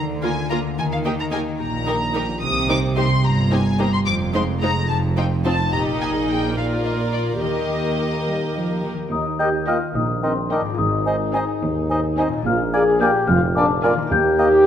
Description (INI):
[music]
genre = cinematic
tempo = 72 BPM (dotted quarters)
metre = 6/8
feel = straight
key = Eb major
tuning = A4 = 441 Hz
[part]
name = warm studio violin section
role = melody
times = 0.0-14.0 s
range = D5 to Eb6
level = -26 LUFS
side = left 2 dB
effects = none
[part]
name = concert harp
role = arpeggios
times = 0.0-14.7 s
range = F2 to Bb4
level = -28 LUFS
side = left 5 dB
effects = none
[part]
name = warm chamber double bass section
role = bass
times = 0.0-14.7 s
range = F1 to Eb2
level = -26 LUFS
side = right 3 dB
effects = none
[part]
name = warm studio cello section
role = bass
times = 0.0-14.7 s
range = Eb2 to G3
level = -26 LUFS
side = right 2 dB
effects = none
[part]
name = dark studio violin section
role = second line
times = 0.2-14.0 s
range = F4 to Eb5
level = -29 LUFS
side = left 1 dB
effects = none
[part]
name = rich studio viola section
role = accompaniment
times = 0.2-14.0 s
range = Ab3 to G4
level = -28 LUFS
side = right 2 dB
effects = none
[part]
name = large celesta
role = melody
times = 9.1-14.7 s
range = C6 to Ab6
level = -25 LUFS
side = left 6 dB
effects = none
[part]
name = mellow French horn section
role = sustained chords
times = 9.1-14.7 s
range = C4 to Ab4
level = -20 LUFS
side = left 2 dB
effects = none
[part]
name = mellow tuba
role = bass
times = 9.1-14.7 s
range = F1 to Eb2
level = -26 LUFS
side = right 3 dB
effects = none
[part]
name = concert flute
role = second line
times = 9.4-14.4 s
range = G5 to Ab5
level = -30 LUFS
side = left 1 dB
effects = none
[part]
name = mellow clarinet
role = second line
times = 9.4-14.5 s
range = Bb4 to C5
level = -30 LUFS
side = left 1 dB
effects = none
[part]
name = mellow cor anglais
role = second line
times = 9.4-14.5 s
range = D5 to Eb5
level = -28 LUFS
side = right 2 dB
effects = none
[part]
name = mellow bassoon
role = accompaniment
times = 9.4-14.5 s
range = Bb3 to Eb4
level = -28 LUFS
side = right 2 dB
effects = none
[sound]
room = moderate scoring stage reverb, RT60 1.7 s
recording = none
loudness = -18 LUFS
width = side -9 dB against mid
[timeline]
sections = 0.0-9.1 A section; 9.1-14.7 B section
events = none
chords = 0.0 Bb/D; 0.8 Eb; 2.4 Cm7; 4.1 Fm7; 4.9 F5; 5.7 Eb/Bb; 6.6 Bb; 7.4 Eb; 10.8 Ab; 12.5 Bb7; 14.1 Eb